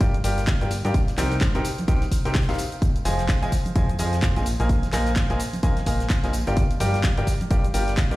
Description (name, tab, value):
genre	piano house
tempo	128 BPM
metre	4/4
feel	swing 59% on 16ths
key	unclear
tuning	A4 = 440 Hz
part	bright grand piano	riff	0.0-8.2 s	C3 to Ab5	-27 LUFS	equal	sidechain pumping, dub echo
part	plucky analog bass	bass	0.0-8.2 s	F1 to G2	-25 LUFS	equal	sidechain pumping
part	electronic kick drum	drums	0.0-8.1 s	none	-22 LUFS	equal	none
part	gated 80s drum kit	drums	0.0-8.1 s	hi-hat, snare drum	-42 LUFS	left 1 dB	none
part	house drum kit	drums	0.0-8.2 s	handclaps, hi-hat, shaker	-32 LUFS	left 1 dB	none
part	tambourine and congas	percussion	0.0-8.2 s	none	-37 LUFS	right 1 dB	none
room	studio reverb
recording	played on a big sound system in a bare room, large studio reverb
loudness	-20 LUFS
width	side -18 dB against mid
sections	0.0-8.2 A section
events	none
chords	0.0 Gm7; 0.9 Cm7; 2.8 Fm7; 4.5 Bb9sus4; 6.3 Gm7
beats	0.01 0.47 | 0.94 1.41 1.88 2.35 | 2.82 3.29 3.76 4.22 | 4.69 5.16 5.63 6.10 | 6.57 7.04 7.51 7.97